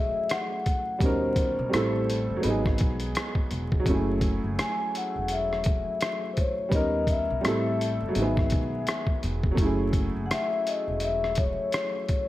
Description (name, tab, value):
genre	lo-fi hip hop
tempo	84 BPM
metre	4/4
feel	swing 60% on 16ths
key	F# dorian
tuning	A4 = 439 Hz
part	vibraphone with soft mallets	melody	0.0-12.3 s	B#4 to G#5	-29 LUFS	left 3 dB	low-pass filter
part	clear upright piano	accompaniment	0.0-12.3 s	B2 to A#4	-29 LUFS	right 1 dB	low-pass filter
part	upright bass	bass	0.0-11.5 s	E1 to D#2	-31 LUFS	equal	none
part	lo-fi sampler-style drum kit	drums	0.3-12.3 s	hi-hat, kick drum, rim click	-28 LUFS	equal	none
room	light reverb, small room ambience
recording	vinyl crackle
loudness	-24 LUFS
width	side -15 dB against mid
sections	0.0-12.3 A section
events	none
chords	0.0 F#m9; 1.0 D#7b13; 1.7 Am7; 2.4 G#m7; 3.9 F#m9; 6.7 D#7b13; 7.4 Am7; 8.1 G#m7; 9.6 F#m9